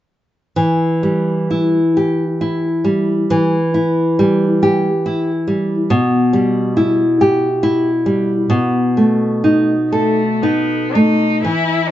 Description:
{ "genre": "romantic duo for cello and classical guitar", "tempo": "37-47 BPM (dotted quarters)", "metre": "6/8", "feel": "rubato", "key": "E minor", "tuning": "A4 = 439 Hz", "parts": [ { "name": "nylon-string guitar", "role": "accompaniment", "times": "0.6-11.9 s", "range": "B2 to A4", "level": "-13 LUFS", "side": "equal", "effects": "none" }, { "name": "clear cello", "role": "melody", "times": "9.9-11.9 s", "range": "A3 to E4", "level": "-17 LUFS", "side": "left 4 dB", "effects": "none" } ], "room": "moderate studio reverb, RT60 0.6 s", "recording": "band playing live in one room, nothing above 7.7 kHz", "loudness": "-13 LUFS", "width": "side -12 dB against mid", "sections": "0.6-11.4 A section", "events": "none", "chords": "0.6 Em; 5.9 Em/B; 8.5 B7" }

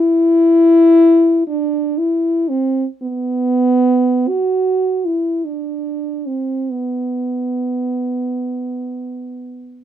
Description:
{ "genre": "classical, free, expressive piece for unaccompanied French horn", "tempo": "39-60 BPM", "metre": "3/4", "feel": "rubato", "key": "unclear", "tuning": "A4 = 444 Hz", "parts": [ { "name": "dark French horn", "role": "solo", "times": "0.0-9.8 s", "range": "B3 to F#4", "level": "-14 LUFS", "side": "equal", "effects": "none" } ], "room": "little or no reverb", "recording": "minimal, uncompressed stereo recording", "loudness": "-14 LUFS", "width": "side -10 dB against mid", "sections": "0.0-9.8 A section", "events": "none", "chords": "none" }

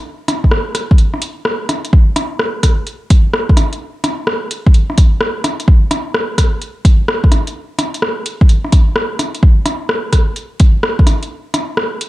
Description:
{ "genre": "future garage", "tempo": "128 BPM", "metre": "4/4", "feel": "swing 66% on 16ths", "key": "none", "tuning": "none", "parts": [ { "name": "deep house drum kit", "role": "drums", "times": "0.3-12.1 s", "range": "hi-hat, rim click", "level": "-18 LUFS", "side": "equal", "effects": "overdrive" }, { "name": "electronic kick drum", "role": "drums", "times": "0.4-11.1 s", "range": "none", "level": "-9 LUFS", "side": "equal", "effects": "overdrive" } ], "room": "light reverb", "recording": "cassette tape", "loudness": "-12 LUFS", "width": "side -17 dB against mid", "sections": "0.0-1.9 A section; 1.9-12.1 B section", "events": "break 1.0-1.9", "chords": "none" }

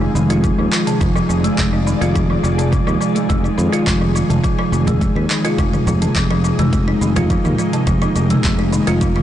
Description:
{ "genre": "organic downtempo", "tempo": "105 BPM", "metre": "4/4", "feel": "straight", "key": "F dorian", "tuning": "A4 = 441 Hz", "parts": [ { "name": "ethereal airy pad", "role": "sustained chords", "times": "0.0-9.2 s", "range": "C3 to D5", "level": "-22 LUFS", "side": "equal", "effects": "ensemble chorus, built-in reverb, sidechain pumping" }, { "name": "kalimba", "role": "arpeggios", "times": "0.0-9.2 s", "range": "C3 to F4", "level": "-18 LUFS", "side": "equal", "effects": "low-pass filter, digital delay" }, { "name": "sustaining fretless electric bass", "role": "bass", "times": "0.0-9.2 s", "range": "F1 to F2", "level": "-18 LUFS", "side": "equal", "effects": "tube saturation" }, { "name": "deep house drum kit", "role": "drums", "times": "0.2-9.2 s", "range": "handclaps, hi-hat, shaker, toms", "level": "-24 LUFS", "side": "equal", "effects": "none" }, { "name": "electronic kick drum", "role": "drums", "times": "0.4-9.1 s", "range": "none", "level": "-20 LUFS", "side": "equal", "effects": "none" }, { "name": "congas", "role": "percussion", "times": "4.9-8.8 s", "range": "none", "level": "-26 LUFS", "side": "right 1 dB", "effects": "none" } ], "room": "light reverb", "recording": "blown-out, overdriven recording, overdrive, nothing above 10.7 kHz", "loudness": "-14 LUFS", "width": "side -11 dB against mid", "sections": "0.0-9.2 A section", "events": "none", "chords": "0.0 Fm7; 4.4 Abadd9/F" }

